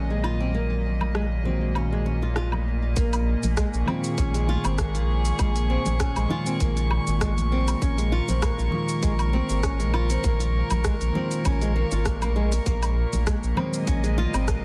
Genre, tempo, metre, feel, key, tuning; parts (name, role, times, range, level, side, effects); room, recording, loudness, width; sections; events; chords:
organic downtempo; 99 BPM; 4/4; swing 54% on 16ths; Bb minor; A4 = 440 Hz
bell-like tine electric piano; accompaniment; 0.0-14.6 s; Eb3 to Gb4; -34 LUFS; equal; sidechain pumping, delay
dark studio string section; sustained chords; 0.0-14.6 s; Bb2 to Db6; -33 LUFS; equal; sidechain pumping
flamenco guitar; arpeggios; 0.0-14.6 s; Ab3 to F4; -34 LUFS; equal; delay
round analog bass; bass; 0.0-14.6 s; Ab1 to Bb1; -27 LUFS; equal; sidechain pumping
bronze singing bowl; texture; 0.0-3.0 s; barely audible
organic electronic drum kit; drums; 0.2-14.6 s; cabasa, hi-hat, rim click, woodblock; -34 LUFS; equal; studio reverb, soft clipping on snare
bongos and congas; percussion; 0.2-14.5 s; -37 LUFS; equal
electronic kick drum; drums; 3.0-14.6 s; -28 LUFS; equal; studio reverb
light reverb, studio ambience; dense, heavily limited modern master; -24 LUFS; mono
0.0-3.0 A section; 3.0-14.6 B section
0.0 Ebm/Bb; 3.0 Bbm7; 12.7 Ebm